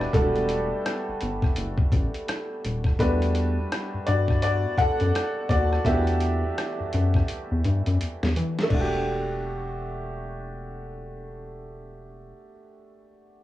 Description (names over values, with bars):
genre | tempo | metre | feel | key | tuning
R&B, neo-soul | 84 BPM | 4/4 | swing 60% on 16ths | E minor | A4 = 440 Hz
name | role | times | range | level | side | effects
bright upright piano | accompaniment | 0.0-13.4 s | E3 to F#5 | -28 LUFS | equal | cassette tape
rubbery square bass | bass | 0.0-12.3 s | D#1 to E3 | -26 LUFS | left 1 dB | none
boom bap sampler-style drum kit | drums | 0.0-8.9 s | crash cymbal, hi-hat, kick drum, rim click, snare drum | -26 LUFS | left 1 dB | none
room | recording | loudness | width
little or no reverb | home recording on cassette, small room ambience | -22 LUFS | side -14 dB against mid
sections
0.0-8.7 A section; 8.7-11.6 B section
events
upright piano solo 0.0-8.7; drum fill 7.3-8.7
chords
0.0 Em11